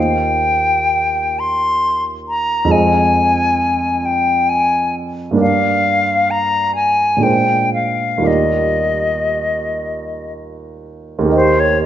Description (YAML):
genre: classical, impressionist duo for flute and grand piano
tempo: 58-70 BPM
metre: 3/4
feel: rubato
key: Eb major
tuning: A4 = 440 Hz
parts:
  - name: silver concert flute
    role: melody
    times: 0.0-11.9 s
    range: C5 to C6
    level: -15 LUFS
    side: left 2 dB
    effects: none
  - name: dark grand piano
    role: accompaniment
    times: 0.0-11.9 s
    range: Eb2 to Eb5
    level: -18 LUFS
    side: right 3 dB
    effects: none
room: wet recital hall reverb, RT60 1.4 s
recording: nothing above 7.6 kHz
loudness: -13 LUFS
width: side -11 dB against mid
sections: 0.0-11.3 A section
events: none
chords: 0.0 Ab69/Eb (rootless); 2.7 Fm7; 5.4 Gm7; 7.3 Bb13; 8.3 Ebmaj9; 11.3 Eb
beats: 0.92 1.86 | 2.73 3.61 4.51 | 5.40 6.31 7.25 | 8.27 9.30 10.32 | 11.34